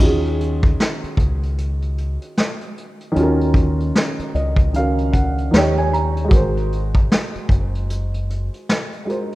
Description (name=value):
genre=lo-fi hip hop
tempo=76 BPM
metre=4/4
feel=swing 61% on 16ths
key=Eb dorian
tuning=A4 = 440 Hz
part: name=felt-muted upright piano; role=accompaniment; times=0.0-9.3 s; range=Eb3 to Bb5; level=-22 LUFS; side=right 1 dB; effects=none
part: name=deep dub fingered electric bass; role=bass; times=0.0-8.5 s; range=Gb1 to Eb2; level=-21 LUFS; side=equal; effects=none
part: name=vintage brush drum kit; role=drums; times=0.0-9.3 s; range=crash cymbal, hi-hat, kick drum, snare drum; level=-18 LUFS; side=equal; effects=none
room=light reverb, small room ambience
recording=rough home demo mix, cassette tape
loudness=-17 LUFS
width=side -18 dB against mid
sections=0.0-9.3 A section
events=felt piano fill 3.9-6.3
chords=0.0 Ebm11; 5.5 Eb7; 6.3 Ab9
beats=0.78 1.57 2.36 | 3.15 3.94 4.73 5.52 | 6.31 7.10 7.89 8.68